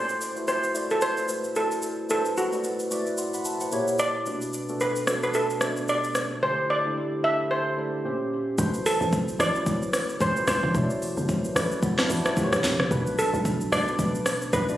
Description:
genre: amapiano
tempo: 111 BPM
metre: 4/4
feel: swing 58% on 16ths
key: A dorian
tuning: A4 = 440 Hz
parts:
  - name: steel pan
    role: melody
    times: 0.0-14.8 s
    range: F#4 to E5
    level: -26 LUFS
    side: right 1 dB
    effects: ping-pong delay
  - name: tine electric piano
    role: accompaniment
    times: 0.0-14.8 s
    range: A#2 to C6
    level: -28 LUFS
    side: equal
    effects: analog chorus
  - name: afro-pop drum kit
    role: drums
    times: 0.1-14.8 s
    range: hi-hat, kick drum, rim click, shaker, snare drum, toms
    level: -28 LUFS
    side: equal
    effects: none
  - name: hollow log drum bass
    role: bass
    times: 8.6-14.8 s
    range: F#1 to C2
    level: -30 LUFS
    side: equal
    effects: none
room: light reverb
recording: recorded on a phone in the room, studio reverb, compression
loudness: -23 LUFS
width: side -13 dB against mid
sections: 0.0-8.6 A section; 8.6-14.8 B section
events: drop 8.6-14.8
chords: 0.0 Am69; 3.7 A#dim7; 4.3 Bm7; 6.4 D9sus4; 8.0 Bbm69; 8.6 Am69; 12.4 A#dim7; 12.9 Bm7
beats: 0.48 1.02 1.56 | 2.10 2.64 3.18 3.72 | 4.26 4.80 5.34 5.88 | 6.42 6.96 7.50 8.04 | 8.59 9.12 9.67 10.21 | 10.75 11.29 11.83 12.37 | 12.91 13.45 13.99 14.53

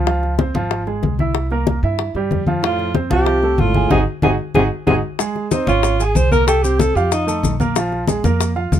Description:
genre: Afro-Cuban jazz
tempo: 187 BPM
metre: 4/4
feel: straight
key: Db major from 5.2 s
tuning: A4 = 440 Hz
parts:
  - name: clear upright piano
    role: accompaniment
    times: 0.0-8.8 s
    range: F3 to Ab5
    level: -21 LUFS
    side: right 3 dB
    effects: none
  - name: upright bass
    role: bass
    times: 0.0-8.8 s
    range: Ab1 to G2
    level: -20 LUFS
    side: right 1 dB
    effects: none
  - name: bongos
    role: percussion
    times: 0.1-8.8 s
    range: none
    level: -24 LUFS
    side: left 11 dB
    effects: none
  - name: congas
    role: percussion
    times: 0.1-8.8 s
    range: none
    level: -21 LUFS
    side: left 4 dB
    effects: none
  - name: breathy trombone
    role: second line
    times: 2.6-4.9 s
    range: A2 to C3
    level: -23 LUFS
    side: left 4 dB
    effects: none
  - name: breathy alto saxophone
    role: melody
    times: 2.7-7.6 s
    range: Eb4 to C5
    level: -18 LUFS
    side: right 1 dB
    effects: none
  - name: maracas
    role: percussion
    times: 5.2-8.8 s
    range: none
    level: -29 LUFS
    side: left 6 dB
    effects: none
room: little or no reverb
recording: close, detailed microphones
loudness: -15 LUFS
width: side -10 dB against mid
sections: 0.0-5.2 A section; 5.2-8.8 B section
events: band accent 3.9-5.2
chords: 0.1 Dbmaj7; 1.3 C7; 2.6 F; 3.9 Ab7(no3); 5.2 Dbmaj7; 6.5 C5; 7.1 F7; 7.8 Bb5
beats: | 0.07 0.39 0.71 1.03 | 1.35 1.67 1.99 2.31 | 2.63 2.95 3.27 3.59 | 3.91 4.23 4.55 4.88 | 5.20 5.52 5.84 6.16 | 6.48 6.80 7.12 7.44 | 7.76 8.08 8.40 8.72

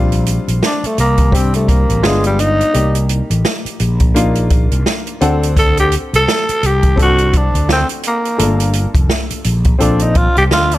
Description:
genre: hip hop, jazz-hop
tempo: 85 BPM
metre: 4/4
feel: swing 59% on 16ths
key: Bb major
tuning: A4 = 440 Hz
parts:
  - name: warm grand piano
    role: accompaniment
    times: 0.0-10.8 s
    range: G3 to F#5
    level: -21 LUFS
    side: left 2 dB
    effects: none
  - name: fretless electric bass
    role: bass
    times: 0.0-10.8 s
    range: F1 to D2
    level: -16 LUFS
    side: equal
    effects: lush chorus
  - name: open jazz drum kit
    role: drums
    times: 0.1-10.8 s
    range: hi-hat, kick drum, snare drum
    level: -16 LUFS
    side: equal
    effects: none
  - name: growling tenor saxophone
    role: melody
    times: 0.7-10.8 s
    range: G3 to A4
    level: -15 LUFS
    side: equal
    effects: slapback echo
room: studio ambience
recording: none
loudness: -11 LUFS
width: side -16 dB against mid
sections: 0.0-10.8 A section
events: tenor saxophone solo 0.0-10.8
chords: 0.0 Bb69; 2.0 G7b9; 2.7 Cm9; 5.2 D7; 8.4 Gm9; 9.8 Bbmaj9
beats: 0.62 1.33 2.04 | 2.74 3.45 4.15 4.86 | 5.57 6.27 6.98 7.68 | 8.39 9.10 9.80 10.51

